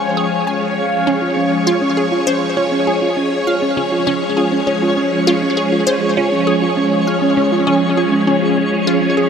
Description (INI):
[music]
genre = ambient, sequencer-driven space music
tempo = 100 BPM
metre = 4/4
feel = straight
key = Db major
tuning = A4 = 441 Hz
[part]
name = mellow horn-like synth lead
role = melody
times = 0.0-1.6 s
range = F5 to Ab5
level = -25 LUFS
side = equal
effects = analog chorus, tape echo
[part]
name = phased string machine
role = sustained chords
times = 0.0-9.3 s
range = F3 to Db5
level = -16 LUFS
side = equal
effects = ensemble chorus, phaser
[part]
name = twinkling granular texture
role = texture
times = 0.0-9.3 s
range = Db5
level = -26 LUFS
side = right 1 dB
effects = built-in reverb
[part]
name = resonant blip pluck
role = riff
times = 0.2-9.3 s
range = Db4 to Ab5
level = -21 LUFS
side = left 1 dB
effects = phaser, tape echo
[part]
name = thumb-piano-like synth pluck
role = arpeggios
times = 1.2-9.2 s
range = Db4 to F4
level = -19 LUFS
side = right 2 dB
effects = chorus, auto-pan, cassette tape, tape echo
[sound]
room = wet huge ambient reverb, RT60 8.0 s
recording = none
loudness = -13 LUFS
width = side -7 dB against mid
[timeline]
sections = 0.0-9.3 A section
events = none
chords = 0.0 Db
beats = 0.47 | 1.07 1.67 2.27 2.87 | 3.47 4.07 4.67 5.27 | 5.87 6.47 7.07 7.67 | 8.27 8.87